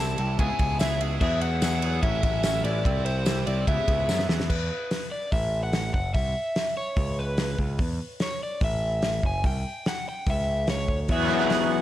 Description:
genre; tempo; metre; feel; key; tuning
indie rock; 146 BPM; 4/4; straight; E mixolydian; A4 = 440 Hz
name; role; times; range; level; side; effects
crunchy overdriven guitar; melody; 0.0-11.8 s; B4 to A5; -29 LUFS; equal; none
string machine, full ensemble; sustained chords; 0.0-4.5, 11.1-11.8 s; G4 to E6; -40 LUFS; equal; ensemble chorus
electric guitar through a small old amp; riff; 0.0-4.5, 11.1-11.8 s; A2 to G#4; -30 LUFS; left 8 dB; none
twangy electric guitar; riff; 0.0-4.5, 11.1-11.8 s; F#3 to G#4; -32 LUFS; right 9 dB; analog chorus
growling picked electric bass; bass; 0.0-11.3 s; F#1 to F#2; -28 LUFS; equal; overdrive
loose indie drum kit; drums; 0.2-11.6 s; crash cymbal, hi-hat, kick drum, ride cymbal, snare drum; -28 LUFS; equal; none
tambourine; percussion; 0.8-4.2 s; none; -39 LUFS; left 8 dB; none
room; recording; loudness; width
small room ambience; dark, warm production; -23 LUFS; side -13 dB against mid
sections
0.0-4.5 A section; 4.5-11.8 B section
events
drum fill 4.1-4.5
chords
0.4 C#m7; 1.2 Eadd9; 2.0 A6; 2.9 C; 3.7 C#m7; 4.5 E5; 5.3 F#m7; 6.1 C; 7.0 Bsus2/C#; 7.8 C#m/E; 8.6 A5; 9.4 C5; 10.3 C#m; 11.1 Eadd9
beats
0.39 0.80 | 1.21 1.62 2.03 2.44 | 2.85 3.27 3.68 4.09 | 4.50 4.91 5.32 5.74 | 6.15 6.56 6.97 7.38 | 7.80 8.21 8.62 9.03 | 9.45 9.86 10.27 10.68 | 11.10 11.51

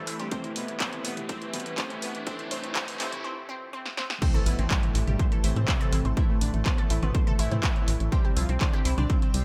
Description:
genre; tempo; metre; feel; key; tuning
melodic techno; 123 BPM; 4/4; straight; A minor; A4 = 440 Hz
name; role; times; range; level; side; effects
soft supersaw; melody; 0.0-9.4 s; G2 to G4; -38 LUFS; equal; sidechain pumping, tape echo
glassy wavetable pluck; second line; 0.0-9.4 s; E4 to G5; -46 LUFS; equal; none
evolving wavetable pad; sustained chords; 0.2-9.4 s; D3 to A5; -48 LUFS; equal; none
analog synth brass; stabs; 0.0-9.4 s; A2 to C4; -39 LUFS; equal; chorus, sidechain pumping, tape echo
riser and impact; sound effects; 0.0-6.2 s; none; -42 LUFS; equal; none
unison pluck; arpeggios; 0.1-9.2 s; C4 to C5; -41 LUFS; equal; phaser, sidechain pumping, tape echo
punchy analog drum machine; drums; 0.1-9.4 s; crash cymbal, handclaps, hi-hat, snare drum, toms; -35 LUFS; equal; tape echo
electronic kick drum; drums; 0.3-9.2 s; none; -28 LUFS; equal; overdrive
tight sequencer bass; bass; 4.5-9.4 s; A1 to A2; -28 LUFS; equal; sidechain pumping
room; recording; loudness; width
light reverb; echo-heavy mix, high-pass filter; -27 LUFS; mono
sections
0.0-4.2 A section; 4.2-9.4 B section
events
build-up 0.0-4.2; filter sweep on analog polysynth 0.0-4.2; riser 0.1-3.2; break 3.2-4.2; drum fill 3.9-4.2; drop 4.2-9.4; impact 4.2-6.2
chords
0.3 C; 2.3 Dm; 4.2 Am; 8.1 C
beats
| 0.32 0.80 1.29 1.78 | 2.27 2.75 3.24 3.73 | 4.22 4.71 5.19 5.68 | 6.17 6.66 7.15 7.63 | 8.12 8.61 9.10

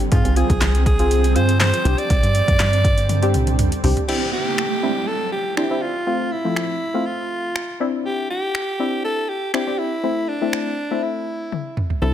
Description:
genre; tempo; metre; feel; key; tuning
dance-pop; 121 BPM; 4/4; straight; C major; A4 = 440 Hz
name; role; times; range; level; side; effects
deep mellow chord stab; accompaniment; 0.0-12.1 s; F3 to Ab4; -24 LUFS; left 2 dB; chorus, sidechain pumping
shimmering ambient pad; sustained chords; 0.0-4.1 s; D3 to Ab4; -28 LUFS; right 3 dB; chorus, built-in reverb, sidechain pumping
deep house drum kit; drums; 0.0-12.0 s; crash cymbal, finger snaps, handclaps, hi-hat, kick drum, snare drum, toms; -22 LUFS; equal; none
raspy alto saxophone; melody; 0.1-12.1 s; D4 to D5; -24 LUFS; right 1 dB; ping-pong delay
plucky analog bass; bass; 0.1-3.9, 12.0-12.1 s; C2 to Ab2; -18 LUFS; equal; sidechain pumping
downlifter; sound effects; 4.1-8.1 s; none; -28 LUFS; right 4 dB; none
room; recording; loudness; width
digital ambience; none; -18 LUFS; side -10 dB against mid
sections
0.0-4.1 A section; 4.1-12.1 B section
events
drum fill 3.1-4.1, 11.5-12.0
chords
0.1 Fm; 1.9 Csus2; 4.1 Cadd9; 6.1 F; 7.8 Cadd9; 10.0 Am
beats
| 0.12 0.61 1.11 1.60 | 2.10 2.60 3.09 3.59 | 4.08 4.58 5.08 5.57 | 6.07 6.56 7.06 7.56 | 8.05 8.55 9.04 9.54 | 10.04 10.53 11.03 11.52 | 12.02

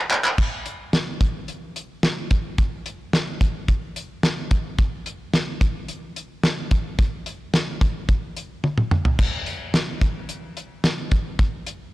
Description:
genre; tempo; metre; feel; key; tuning
pop; 109 BPM; 4/4; straight; none; none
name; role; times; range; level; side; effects
damped 70s drum kit; drums; 0.1-11.8 s; crash cymbal, handclaps, hi-hat, kick drum, snare drum, splash cymbal, toms; -21 LUFS; equal; none
room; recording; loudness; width
moderate concert hall reverb, RT60 2.3 s; blown-out, overdriven recording, overdrive; -20 LUFS; side -18 dB against mid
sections
0.0-9.2 A section; 9.2-11.9 B section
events
drum fill 0.0-0.4, 8.6-9.2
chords
none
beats
| 0.38 0.93 1.48 2.03 | 2.58 3.13 3.69 4.24 | 4.79 5.34 5.89 6.44 | 6.99 7.54 8.09 8.64 | 9.19 9.74 10.29 10.84 | 11.39

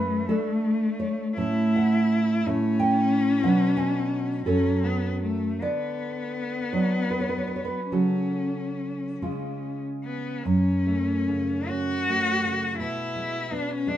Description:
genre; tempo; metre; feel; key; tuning
romantic duo for cello and classical guitar; 46-62 BPM (dotted quarters); 6/8; rubato; F# minor; A4 = 441 Hz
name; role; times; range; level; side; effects
rich cello; melody; 0.0-14.0 s; A3 to F#4; -27 LUFS; left 4 dB; none
nylon-string guitar; accompaniment; 0.0-14.0 s; F#2 to G#5; -25 LUFS; right 2 dB; none
room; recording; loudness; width
wet large studio reverb, RT60 1.0 s; band playing live in one room; -23 LUFS; side -12 dB against mid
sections
0.0-10.5 A section; 10.5-14.0 B section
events
none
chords
0.0 D/F#; 1.4 A; 3.4 Bm; 4.5 F#m; 5.6 D; 7.9 F#m/C#; 9.2 C#; 10.5 F#m; 12.8 G#dim/B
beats
0.28 | 1.37 2.46 | 3.44 4.47 | 5.62 6.74 | 7.93 9.22 | 10.45 11.69 | 12.80 13.88

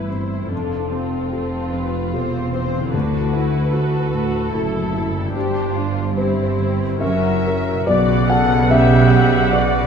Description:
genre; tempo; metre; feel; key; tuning
cinematic, emotional film score for orchestra; 74 BPM; 3/4; rubato; unclear; A4 = 440 Hz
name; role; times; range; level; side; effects
muted studio violin section; melody; 0.0-9.9 s; A4 to C5; -30 LUFS; left 5 dB; none
muted studio violin section; second line; 0.0-9.9 s; E4 to F#5; -27 LUFS; left 3 dB; none
felt-muted upright piano; accompaniment; 0.0-9.9 s; B1 to F#5; -22 LUFS; left 3 dB; none
muted symphonic viola section; accompaniment; 0.0-9.9 s; C#3 to F#5; -26 LUFS; right 2 dB; none
concert harp; arpeggios; 0.0-9.9 s; F#2 to C#6; -28 LUFS; left 6 dB; none
muted studio cello section; bass; 0.0-9.9 s; D2 to B2; -22 LUFS; right 4 dB; none
muted studio double bass section; bass; 0.0-9.9 s; E1 to D2; -23 LUFS; right 5 dB; none
concert flute; second line; 7.0-9.9 s; F#4 to A#4; -22 LUFS; left 2 dB; none
mellow French horn section; sustained chords; 7.9-9.9 s; C#3 to B3; -28 LUFS; equal; none
room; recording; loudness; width
wet scoring stage reverb, RT60 2.1 s; minimal, uncompressed stereo recording; -16 LUFS; side -6 dB against mid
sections
0.0-7.9 A section; 7.9-9.9 B section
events
none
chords
0.0 Amadd9; 0.5 F; 2.9 Dadd9; 5.3 Gsus4; 7.0 F#7; 7.9 Bmadd9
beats
| 0.52 1.32 2.14 | 2.94 3.74 4.54 | 5.35 6.16 7.01 | 7.88 8.71 9.53

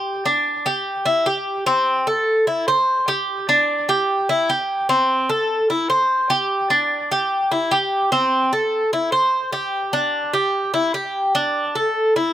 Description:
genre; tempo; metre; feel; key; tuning
latin; 149 BPM; 4/4; straight; unclear; A4 = 439 Hz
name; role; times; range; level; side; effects
Cuban tres; solo; 0.0-12.3 s; C4 to C5; -17 LUFS; equal; none
room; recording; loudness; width
little or no reverb; recorded outdoors, with no room sound; -17 LUFS; side -12 dB against mid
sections
0.0-11.3 A section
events
none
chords
none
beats
| 0.05 0.45 0.85 1.26 | 1.66 2.06 2.47 2.87 | 3.27 3.68 4.08 4.48 | 4.89 5.29 5.69 6.09 | 6.50 6.90 7.30 7.71 | 8.11 8.52 8.92 9.32 | 9.73 10.13 10.54 10.94 | 11.34 11.75 12.15

